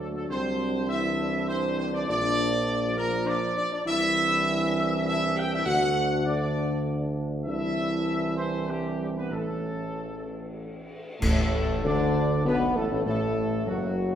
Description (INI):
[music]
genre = classical, ceremonial fanfare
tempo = 100 BPM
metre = 3/4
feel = straight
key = unclear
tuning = A4 = 440 Hz
[part]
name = clear trumpet section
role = melody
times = 0.0-14.2 s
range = F#4 to G5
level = -29 LUFS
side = right 1 dB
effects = none
[part]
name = dark trombone section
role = sustained chords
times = 0.0-14.2 s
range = F#2 to D4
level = -31 LUFS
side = right 1 dB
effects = none
[part]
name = warm French horn section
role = sustained chords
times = 0.0-14.2 s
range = F#3 to G4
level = -31 LUFS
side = left 3 dB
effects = none
[part]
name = warm tuba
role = bass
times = 0.0-14.2 s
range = F#1 to D2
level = -31 LUFS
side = right 1 dB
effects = none
[part]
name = cymbal swell, clash cymbals and concert bass drum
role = percussion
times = 7.5-12.4 s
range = none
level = -31 LUFS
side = equal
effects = none
[sound]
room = wet recital hall reverb, RT60 1.4 s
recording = recorded in a church or concert hall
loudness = -24 LUFS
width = side -9 dB against mid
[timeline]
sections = 0.0-11.2 A section; 11.2-14.2 B section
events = band accent 11.2-11.9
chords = 0.3 Cadd9; 2.1 Bb; 3.9 Cadd9; 5.7 D; 7.5 Cadd9; 9.3 A; 11.2 D/A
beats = | 0.30 0.89 1.48 | 2.08 2.67 3.27 | 3.87 4.47 5.06 | 5.66 6.26 6.87 | 7.47 8.07 8.69 | 9.32 9.96 10.59 | 11.22 11.85 12.46 | 13.07 13.68